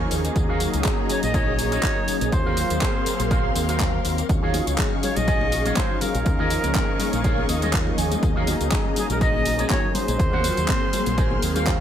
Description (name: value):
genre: nu-disco, nu disco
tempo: 122 BPM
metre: 4/4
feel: swing 54% on 16ths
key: unclear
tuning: A4 = 441 Hz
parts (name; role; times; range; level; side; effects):
- bright silver concert flute; melody; 0.0-11.8 s; Ab4 to Eb5; -28 LUFS; equal; digital delay
- warm analog pad; accompaniment; 0.0-11.8 s; F3 to F5; -26 LUFS; left 1 dB; chorus
- warm symphonic string section; sustained chords; 0.0-11.8 s; Gb4 to F6; -33 LUFS; left 1 dB; vintage 12-bit sampler grit, sidechain pumping
- electric guitar with an envelope filter; riff; 0.0-11.8 s; F4 to Ab5; -31 LUFS; right 3 dB; wide subtle chorus
- fingered electric bass with an envelope filter; bass; 0.0-11.8 s; Bb1 to Eb2; -26 LUFS; equal; none
- pop drum kit; drums; 0.1-11.8 s; handclaps, hi-hat, tambourine; -29 LUFS; equal; none
- electronic kick drum; drums; 0.4-11.8 s; none; -24 LUFS; equal; none
- soft round pluck; arpeggios; 4.3-11.8 s; C3 to Ab3; -36 LUFS; left 5 dB; none
- congas; percussion; 4.5-11.7 s; none; -34 LUFS; left 4 dB; none
room: light reverb, digital ambience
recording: none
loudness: -19 LUFS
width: side -10 dB against mid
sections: 0.0-11.8 A section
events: clean electric guitar fill 0.0-0.4, 7.2-8.2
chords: 0.4 Gb69; 2.3 Ab13; 4.3 Ebm11; 6.3 Db69; 8.2 Gb69; 10.2 Ab13